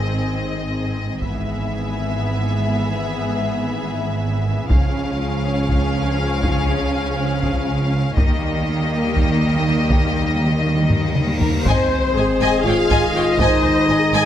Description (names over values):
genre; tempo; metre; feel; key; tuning
cinematic, epic orchestral film score; 242 BPM (eighths); 7/8; straight; unclear; A4 = 440 Hz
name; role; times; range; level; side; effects
rich studio violin section; melody; 0.0-14.3 s; Bb4 to F5; -26 LUFS; left 4 dB; none
warm studio violin section; second line; 0.0-14.3 s; G4 to Ab5; -28 LUFS; left 3 dB; none
warm symphonic viola section; accompaniment; 0.0-14.3 s; Bb3 to C5; -27 LUFS; right 1 dB; none
dark French horn section; sustained chords; 0.0-14.3 s; Eb3 to F4; -25 LUFS; left 3 dB; none
rich symphonic cello section; bass; 0.0-14.2 s; Ab2 to Eb3; -24 LUFS; right 2 dB; none
rich symphonic double bass section; bass; 0.0-14.2 s; Ab1 to Eb2; -24 LUFS; right 2 dB; none
taiko ensemble; drums; 1.2-13.9 s; none; -21 LUFS; equal; none
timpani; percussion; 8.2-11.6 s; Eb3; -27 LUFS; equal; none
cymbal swell and sub drop; sound effects; 10.9-13.4 s; none; -28 LUFS; equal; none
warm trombone section; sustained chords; 11.7-14.3 s; Eb3 to Ab3; -27 LUFS; right 3 dB; none
clear trumpet section; stabs; 11.7-14.3 s; Eb5; -24 LUFS; left 1 dB; none
room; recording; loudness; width
moderate scoring stage reverb, RT60 1.9 s; none; -17 LUFS; side -10 dB against mid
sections
0.0-11.7 A section; 11.7-14.3 B section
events
build-up 0.0-11.7; timpani fill 8.2-11.7; drum fill 10.9-11.7; cymbal swell 10.9-11.7; impact 11.7-13.4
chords
0.0 Ab; 1.2 E/G#; 4.7 Db; 8.2 Eb; 11.7 Ab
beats
0.23 0.48 0.72 0.97 | 1.22 1.47 1.72 1.97 2.21 2.46 2.71 | 2.96 3.21 3.46 3.71 3.96 4.20 4.45 | 4.70 4.95 5.20 5.45 5.69 5.94 6.19 | 6.44 6.69 6.93 7.18 7.43 7.68 7.93 | 8.18 8.43 8.67 8.92 9.17 9.42 9.67 | 9.91 10.16 10.41 10.66 10.91 11.15 11.40 | 11.65 11.90 12.15 12.39 12.64 12.89 13.14 | 13.38 13.63 13.88 14.13